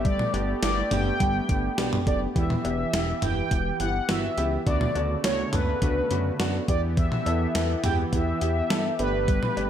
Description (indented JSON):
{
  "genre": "synth-pop",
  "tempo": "104 BPM",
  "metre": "4/4",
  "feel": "straight",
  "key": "E minor",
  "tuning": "A4 = 440 Hz",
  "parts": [
    { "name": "analog synth brass", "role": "melody", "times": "0.0-9.7 s", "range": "B4 to G5", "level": "-29 LUFS", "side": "equal", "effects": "chorus" },
    { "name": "warm concert grand piano", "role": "accompaniment", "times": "0.0-9.7 s", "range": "B3 to A4", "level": "-31 LUFS", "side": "equal", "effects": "none" },
    { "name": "brassy analog pad", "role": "sustained chords", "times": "0.0-9.7 s", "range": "C#3 to G4", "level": "-33 LUFS", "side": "right 2 dB", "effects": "chorus" },
    { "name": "chorused synth bass", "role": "bass", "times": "0.0-9.7 s", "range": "E1 to G2", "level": "-29 LUFS", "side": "equal", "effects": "none" },
    { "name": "gated 80s digital drum machine", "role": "drums", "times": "0.0-9.7 s", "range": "cowbell, hi-hat, kick drum, snare drum, toms", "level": "-27 LUFS", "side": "equal", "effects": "gated reverb, gated reverb snare" },
    { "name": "soft round pluck", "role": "arpeggios", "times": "0.1-9.4 s", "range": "D3 to A4", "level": "-36 LUFS", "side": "right 1 dB", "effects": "none" }
  ],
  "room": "light reverb",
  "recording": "none",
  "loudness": "-22 LUFS",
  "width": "side -9 dB against mid",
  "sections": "0.0-9.7 A section",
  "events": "none",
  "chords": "0.0 Gadd9; 2.4 Em; 4.7 Bm7/D; 6.7 Em; 9.0 Gadd9",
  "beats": "| 0.05 0.63 1.20 1.78 | 2.36 2.94 3.51 4.09 | 4.67 5.24 5.82 6.40 | 6.97 7.55 8.13 8.70 | 9.28"
}